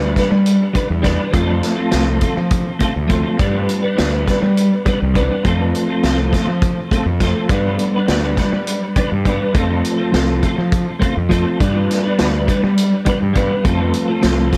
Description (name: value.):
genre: psychedelic rock.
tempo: 205 BPM (eighths).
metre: 7/8.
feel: straight.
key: G mixolydian.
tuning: A4 = 442 Hz.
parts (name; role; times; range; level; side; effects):
twelve-string electric guitar; riff; 0.0-14.6 s; F3 to B4; -20 LUFS; equal; rotary speaker, analog delay.
fuzz fingered electric bass; bass; 0.0-14.5 s; C2 to G3; -22 LUFS; equal; overdrive.
vintage drum kit; drums; 0.2-14.6 s; hi-hat, kick drum, snare drum; -22 LUFS; equal; analog delay.
room: light reverb, studio reverb.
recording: echo-heavy mix.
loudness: -17 LUFS.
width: mono.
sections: 0.0-14.6 A section.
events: none.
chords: 0.0 G; 1.3 F; 3.4 G; 5.5 F; 7.5 G; 9.6 F; 11.6 G; 13.7 F.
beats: 0.18 0.47 0.76 1.05 | 1.35 1.64 1.94 2.23 2.52 2.81 3.11 | 3.40 3.69 3.99 4.28 4.57 4.86 5.16 | 5.45 5.74 6.04 6.33 6.62 6.91 7.21 | 7.50 7.79 8.09 8.38 8.67 8.96 9.26 | 9.55 9.84 10.14 10.43 10.72 11.02 11.31 | 11.60 11.90 12.19 12.48 12.78 13.07 13.36 | 13.65 13.95 14.24 14.53.